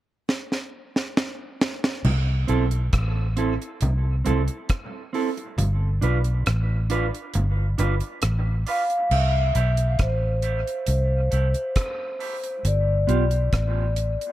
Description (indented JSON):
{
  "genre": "dub reggae",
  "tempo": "68 BPM",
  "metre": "4/4",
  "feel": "straight",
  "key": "C major",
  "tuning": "A4 = 440 Hz",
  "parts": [
    { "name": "deep reggae drum kit", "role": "drums", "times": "0.3-14.3 s", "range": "crash cymbal, hi-hat, kick drum, rim click, snare drum", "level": "-27 LUFS", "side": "equal", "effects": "none" },
    { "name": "vintage muted fingered electric bass", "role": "bass", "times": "2.0-14.2 s", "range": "G1 to C2", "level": "-22 LUFS", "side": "equal", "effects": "none" },
    { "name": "congas", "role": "percussion", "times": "2.0-8.0 s", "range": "none", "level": "-31 LUFS", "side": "right 2 dB", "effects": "high-pass filter on perc, dub echo" },
    { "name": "mellow electric guitar", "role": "accompaniment", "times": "2.5-13.2 s", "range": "A3 to B4", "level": "-30 LUFS", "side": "right 5 dB", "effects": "high-pass filter, dub echo" },
    { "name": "vibraphone with soft mallets", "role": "melody", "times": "8.7-14.3 s", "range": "C5 to F5", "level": "-26 LUFS", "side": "left 1 dB", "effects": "dub echo" }
  ],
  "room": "light reverb, small room ambience",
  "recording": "none",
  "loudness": "-21 LUFS",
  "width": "side -14 dB against mid",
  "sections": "0.0-2.0 A section; 2.0-9.1 B section; 9.1-14.3 C section",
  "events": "drum fill 0.3-2.0; kick muted 5.6-9.1; filter sweep 5.6-12.6; part muted 9.1-14.3",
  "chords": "0.0 N.C.; 2.0 C6; 5.6 G7; 9.1 C6; 12.6 G",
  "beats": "0.28 1.17 | 2.05 2.93 3.81 4.70 | 5.58 6.46 7.35 8.23 | 9.11 9.99 10.88 11.76 | 12.64 13.53"
}